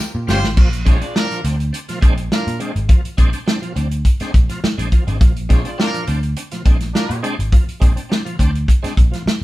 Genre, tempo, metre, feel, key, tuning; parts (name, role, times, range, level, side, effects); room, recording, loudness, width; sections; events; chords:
funk; 104 BPM; 4/4; straight; Bb mixolydian; A4 = 440 Hz
warm studio string section; sustained chords; 0.0-0.5 s; C4 to G4; -42 LUFS; left 1 dB
warm soul drum kit; drums; 0.0-9.4 s; crash cymbal, hi-hat, kick drum, snare drum; -14 LUFS; equal
vintage muted picked electric bass; bass; 0.1-9.4 s; G1 to Bb2; -21 LUFS; equal
warm horn section; second line; 0.3-7.2 s; D4 to D5; -24 LUFS; equal
bright tonewheel organ; stabs; 0.3-9.2 s; Bb2 to F4; -27 LUFS; equal; chorus vibrato, slow rotary speaker
light reverb; band playing live in one room; -14 LUFS; side -17 dB against mid
0.6-9.4 A section
drum fill 0.0-0.6; band accent 0.0-0.6
0.0 Eb13 (rootless); 0.6 Bb9